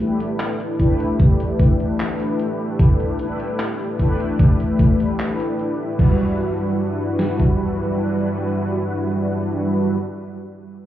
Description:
vaporwave; 75 BPM; 4/4; straight; E minor; A4 = 441 Hz
mellow synth brass; accompaniment; 0.0-10.0 s; G3 to B4; -20 LUFS; equal; analog chorus, vintage 12-bit sampler grit, tape echo
gated 80s digital drum machine; drums; 0.0-6.2 s; crash cymbal, handclaps, hi-hat; -32 LUFS; left 1 dB; gated reverb, overdrive
gated 80s digital drum machine; drums; 0.8-7.6 s; kick drum, snare drum; -17 LUFS; equal; gated reverb, gated reverb snare, overdrive
moderate concert hall reverb, RT60 2.1 s; heard muffled through a wall, club reverb, EQ; -17 LUFS; side -12 dB against mid
0.0-6.0 A section; 6.0-9.2 B section
0.0 A9sus4; 6.0 Em9
0.39 1.19 1.99 | 2.79 3.59 4.39 5.19 | 5.99 6.79 7.59 8.39

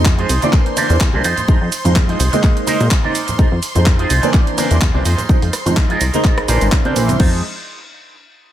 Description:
filtered disco house; 126 BPM; 4/4; swing 55% on 16ths; F dorian; A4 = 440 Hz
warm baby grand piano; accompaniment; 0.0-7.4 s; E3 to E4; -20 LUFS; right 2 dB; phaser, sidechain pumping
string machine, full ensemble; sustained chords; 0.0-7.2 s; C6; -29 LUFS; left 1 dB; ensemble chorus, vintage 12-bit sampler grit, sidechain pumping
plucky analog bass; bass; 0.0-7.4 s; Ab1 to C3; -17 LUFS; equal; sidechain pumping
electric guitar with an envelope filter; riff; 0.1-7.4 s; D4 to D5; -23 LUFS; right 4 dB; phaser, sidechain pumping, analog delay
electronic kick drum; drums; 0.1-7.3 s; -14 LUFS; equal
house drum kit; drums; 0.1-7.3 s; crash cymbal, handclaps, hi-hat, ride cymbal, rim click, shaker; -23 LUFS; right 1 dB; analog delay
tambourine and congas; percussion; 0.1-7.2 s; -27 LUFS; right 1 dB
light reverb, digital ambience; echo-heavy mix; -12 LUFS; side -12 dB against mid
0.0-7.2 A section; 7.2-8.5 B section
drop 0.0-7.2
0.0 Fm7; 0.5 C9/E; 1.2 Fm7; 2.4 Bb9sus4; 3.4 Fm7; 4.3 C9/E; 5.1 Fm7; 6.2 Bb9sus4; 6.7 C9; 7.2 Fm7
0.06 0.53 1.01 | 1.48 1.96 2.44 2.91 | 3.39 3.87 4.34 4.82 | 5.29 5.77 6.25 6.72 | 7.20

